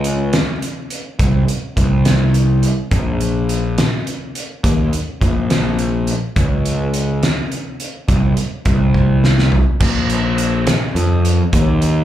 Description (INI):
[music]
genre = indie rock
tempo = 70 BPM (dotted quarters)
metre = 6/8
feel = straight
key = Bb minor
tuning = A4 = 442 Hz
[part]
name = fuzz picked electric bass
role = bass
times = 0.0-12.0 s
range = Bb1 to F2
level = -15 LUFS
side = equal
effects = overdrive
[part]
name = loose indie drum kit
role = drums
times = 0.0-11.9 s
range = crash cymbal, hi-hat, kick drum, snare drum, toms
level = -18 LUFS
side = equal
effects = none
[sound]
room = light reverb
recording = live gig heard through the venue's PA, club reverb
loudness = -14 LUFS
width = side -12 dB against mid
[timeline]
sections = 0.0-9.8 A section; 9.8-12.0 B section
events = drum fill 8.9-9.8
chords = none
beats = 0.34 | 1.20 2.06 | 2.92 3.78 | 4.64 5.50 | 6.36 7.22 | 8.09 8.95 | 9.81 10.67 | 11.53